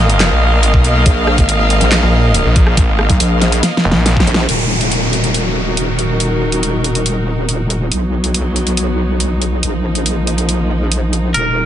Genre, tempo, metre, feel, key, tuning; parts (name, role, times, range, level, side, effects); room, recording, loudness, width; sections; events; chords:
heavy wobble dubstep; 140 BPM; 4/4; half-time; Eb minor; A4 = 440 Hz
rich studio string section; sustained chords; 0.0-11.7 s; Eb3 to F5; -19 LUFS; right 1 dB; sidechain pumping
snarling distorted saw bass; bass; 0.0-4.3 s; F1 to Cb2; -13 LUFS; equal; distortion, overdrive
dubstep drum kit; drums; 0.1-11.4 s; handclaps, hi-hat, rim click, snare drum; -17 LUFS; equal
electronic kick drum; drums; 0.7-4.3 s; -12 LUFS; equal
wobble bass; bass; 1.1-11.7 s; Eb1 to Cb2; -16 LUFS; equal; chorus, overdrive
downlifter; sound effects; 4.5-7.9 s; -20 LUFS; left 2 dB
twangy electric guitar; melody; 11.3-11.7 s; Bb4; -15 LUFS; right 1 dB
little or no reverb; nothing above 10.9 kHz; -12 LUFS; side -11 dB against mid
0.0-4.5 A section; 4.5-11.7 B section
drop 0.0-4.5; drum fill 3.6-4.5; band accent 4.3
0.0 Bbsus4; 4.5 Ebm; 7.9 B; 9.6 Bbsus4